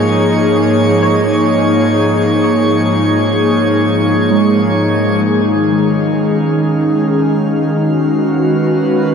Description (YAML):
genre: ambient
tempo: 64 BPM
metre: 4/4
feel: straight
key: unclear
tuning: A4 = 440 Hz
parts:
  - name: airy breathy pad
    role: sustained chords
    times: 0.0-9.1 s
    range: G#2 to C#5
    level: -12 LUFS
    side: equal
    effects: chorus
  - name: overtone-sweeping drone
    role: drone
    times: 0.0-5.3 s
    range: G#3 to G#4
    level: -22 LUFS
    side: right 1 dB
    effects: none
  - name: drifting glass-harmonics texture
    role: texture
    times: 0.0-9.1 s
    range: C#5 to E#6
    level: -21 LUFS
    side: right 1 dB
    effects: chorus, built-in reverb
  - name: soft round pluck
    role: arpeggios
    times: 1.0-7.4 s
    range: G#3 to C#5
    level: -21 LUFS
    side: right 1 dB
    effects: none
room: wet huge ambient reverb, RT60 7.6 s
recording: in a vast, echoing space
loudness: -11 LUFS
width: side -6 dB against mid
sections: 0.0-5.2 A section; 5.2-9.1 B section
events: none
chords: 0.0 C#add9/G#; 5.2 G#m7